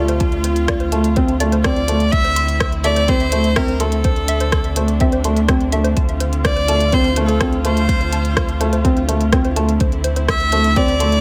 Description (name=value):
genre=piano and strings electronica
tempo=125 BPM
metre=4/4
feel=straight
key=D minor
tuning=A4 = 436 Hz
part: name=warm viola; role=melody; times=0.0-11.2 s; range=F4 to E5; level=-23 LUFS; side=equal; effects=none
part: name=dark chamber string section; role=sustained chords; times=0.0-11.2 s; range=D3 to F4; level=-28 LUFS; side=equal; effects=sidechain pumping
part: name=warbly dusty pluck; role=arpeggios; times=0.0-11.1 s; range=C5 to C6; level=-30 LUFS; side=equal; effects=chorus, sidechain pumping, digital delay
part: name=felt-muted upright piano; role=riff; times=0.0-11.1 s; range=A3 to C4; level=-22 LUFS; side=equal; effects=none
part: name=warm sub bass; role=bass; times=0.0-11.2 s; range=D2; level=-23 LUFS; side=equal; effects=sidechain pumping
part: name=minimal click drum kit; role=drums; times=0.1-11.2 s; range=hi-hat, rim click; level=-26 LUFS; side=equal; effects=none
part: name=electronic kick drum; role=drums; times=0.2-10.9 s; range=none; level=-22 LUFS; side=equal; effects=none
room=light reverb, small room ambience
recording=none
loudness=-17 LUFS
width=mono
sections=0.0-11.2 A section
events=none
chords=0.0 Dm7; 2.1 Am/D; 6.0 Dm7; 9.8 Am/D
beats=| 0.20 0.69 1.17 1.65 | 2.12 2.60 3.08 3.56 | 4.04 4.53 5.00 5.49 | 5.96 6.45 6.92 7.41 | 7.88 8.37 8.85 9.32 | 9.80 10.29 10.77